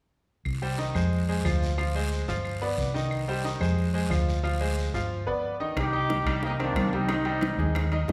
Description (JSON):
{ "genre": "latin, salsa", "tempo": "181 BPM", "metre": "4/4", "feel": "straight", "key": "C harmonic minor", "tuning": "A4 = 440 Hz", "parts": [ { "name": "hollow-body short-scale fingered electric bass", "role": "bass", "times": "0.5-8.1 s", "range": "G1 to F2", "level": "-30 LUFS", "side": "equal", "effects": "none" }, { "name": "claves", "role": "percussion", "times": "0.5-7.9 s", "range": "none", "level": "-46 LUFS", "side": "equal", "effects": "none" }, { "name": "guiro", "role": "percussion", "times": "0.5-5.1 s", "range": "none", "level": "-43 LUFS", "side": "equal", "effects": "none" }, { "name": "bright concert grand piano", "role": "accompaniment", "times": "0.6-8.1 s", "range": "Eb3 to F5", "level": "-33 LUFS", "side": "equal", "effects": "none" }, { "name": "mellow horn section", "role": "melody", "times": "5.8-7.9 s", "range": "Bb3 to G4", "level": "-32 LUFS", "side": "equal", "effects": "none" }, { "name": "bongos", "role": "percussion", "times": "5.8-8.1 s", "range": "none", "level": "-37 LUFS", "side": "equal", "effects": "none" }, { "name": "congas", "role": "percussion", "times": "5.8-8.1 s", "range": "none", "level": "-37 LUFS", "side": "equal", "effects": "none" }, { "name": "timbales", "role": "percussion", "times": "5.8-8.1 s", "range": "none", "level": "-39 LUFS", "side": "equal", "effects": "none" } ], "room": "wet recital hall reverb, RT60 1.5 s", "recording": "recorded in a church or concert hall", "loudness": "-27 LUFS", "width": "mono", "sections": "0.5-5.8 A section; 5.8-8.1 B section", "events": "none", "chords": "0.5 Cm; 1.1 Fm; 1.8 Dm7b5; 2.4 G7; 3.1 Cm; 3.8 Fm; 4.4 Dm7b5; 5.1 G7; 5.8 Cm7; 7.1 Abmaj7/C", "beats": "| 0.45 0.79 1.12 1.45 | 1.78 2.12 2.45 2.78 | 3.11 3.44 3.78 4.11 | 4.44 4.77 5.11 5.44 | 5.77 6.10 6.43 6.76 | 7.09 7.42 7.76 8.09" }